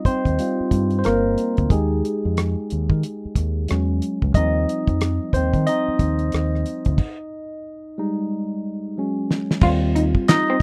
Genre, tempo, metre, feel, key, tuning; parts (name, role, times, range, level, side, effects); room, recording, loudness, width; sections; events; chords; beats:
R&B, neo-soul; 91 BPM; 4/4; swing 62% on 16ths; Eb major; A4 = 440 Hz
barky tine electric piano; accompaniment; 0.0-10.6 s; F3 to Eb5; -25 LUFS; equal; phaser
deep dub fingered electric bass; bass; 0.1-10.2 s; G1 to Eb3; -24 LUFS; equal
cloth-damped thuddy drum kit; drums; 0.1-10.6 s; crash cymbal, handclaps, hi-hat, kick drum, rim click, snare drum; -22 LUFS; equal
electric guitar through a small old amp; second line; 9.6-10.6 s; C4 to F4; -25 LUFS; equal; tremolo
little or no reverb; rough home demo mix; -21 LUFS; mono
0.0-9.6 A section; 9.6-10.6 B section
tine electric piano solo 0.0-9.6, 9.6-10.6; stop 7.0-9.6; drum fill 9.0-9.6
0.0 Eb69; 1.7 Fm9/Eb; 3.7 E69; 4.3 Eb69; 7.0 Ebadd11; 9.0 Gbsus2; 9.6 Eb69
0.39 1.04 | 1.70 2.36 3.02 3.68 | 4.34 5.00 5.66 6.32 | 6.98 7.64 8.30 8.96 | 9.62 10.28